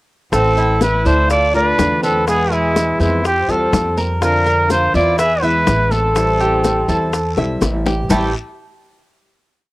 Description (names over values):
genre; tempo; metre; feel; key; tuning
latin, Cuban son and guajira; 124 BPM; 4/4; straight; A minor; A4 = 437 Hz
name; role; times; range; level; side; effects
breathy trumpet; melody; 0.3-7.6 s; E4 to E5; -16 LUFS; equal; cassette tape
dark chamber violin section; second line; 0.3-7.6 s; G#3 to G#4; -25 LUFS; right 1 dB; none
nylon-string guitar; accompaniment; 0.3-8.3 s; A2 to F4; -22 LUFS; left 2 dB; none
Cuban tres; arpeggios; 0.3-8.3 s; A3 to F5; -24 LUFS; right 2 dB; none
upright bass; bass; 0.3-8.3 s; A1 to F2; -20 LUFS; equal; none
bongos; percussion; 0.3-8.2 s; none; -21 LUFS; left 5 dB; none
congas; percussion; 0.3-8.2 s; none; -26 LUFS; left 1 dB; none
guiro; percussion; 0.3-8.2 s; none; -35 LUFS; left 4 dB; none
maracas; percussion; 0.3-8.2 s; none; -32 LUFS; right 4 dB; none
room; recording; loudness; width
moderate booth ambience, RT60 0.2 s; home recording on cassette; -13 LUFS; side -19 dB against mid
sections
0.3-8.1 A section; 8.1-9.7 final chord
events
drum fill 7.4-8.1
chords
0.3 Am; 1.3 Dm; 2.3 E; 3.2 Fadd9; 4.2 Bbadd9/F; 5.2 E; 6.2 Am7; 8.1 A7(no3)